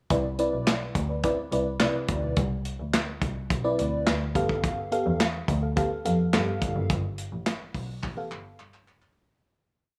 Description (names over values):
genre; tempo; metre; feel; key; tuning
early-eighties boogie funk; 106 BPM; 4/4; straight; C major; A4 = 440 Hz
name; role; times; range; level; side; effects
FM electric piano with soft pad layer; accompaniment; 0.1-8.6 s; B3 to F5; -30 LUFS; equal; chorus
rich double bass; bass; 0.1-9.1 s; F#1 to C3; -32 LUFS; equal; none
modern studio drum kit; drums; 0.1-9.2 s; handclaps, hi-hat, kick drum, snare drum; -30 LUFS; equal; none
room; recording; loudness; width
light reverb, studio reverb; none; -27 LUFS; mono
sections
0.1-9.2 verse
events
fade-out 6.9-9.2; drum fill 8.0-9.2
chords
0.1 Cmaj9; 4.3 G9